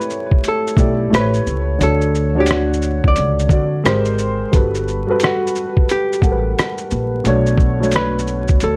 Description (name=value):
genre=lo-fi hip hop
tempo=88 BPM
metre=4/4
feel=swing 66% on 16ths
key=D major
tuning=A4 = 440 Hz
part: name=archtop guitar, miked and amplified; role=melody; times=0.0-8.8 s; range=F#4 to D5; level=-24 LUFS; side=equal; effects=low-pass filter
part: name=dark upright piano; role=accompaniment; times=0.0-8.8 s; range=B2 to F#5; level=-21 LUFS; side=equal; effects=cassette tape, low-pass filter
part: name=lo-fi sampler-style drum kit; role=drums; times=0.0-8.8 s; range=hi-hat, kick drum, rim click, shaker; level=-19 LUFS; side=equal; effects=none
part: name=upright bass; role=bass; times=0.8-8.8 s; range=G1 to D2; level=-22 LUFS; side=equal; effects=none
room=light reverb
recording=vinyl crackle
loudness=-17 LUFS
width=mono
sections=0.0-8.8 A section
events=none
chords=0.0 A7sus4; 1.1 A7; 1.8 Dmaj7; 3.8 G#maj9; 4.5 Gmaj9; 7.3 Bm9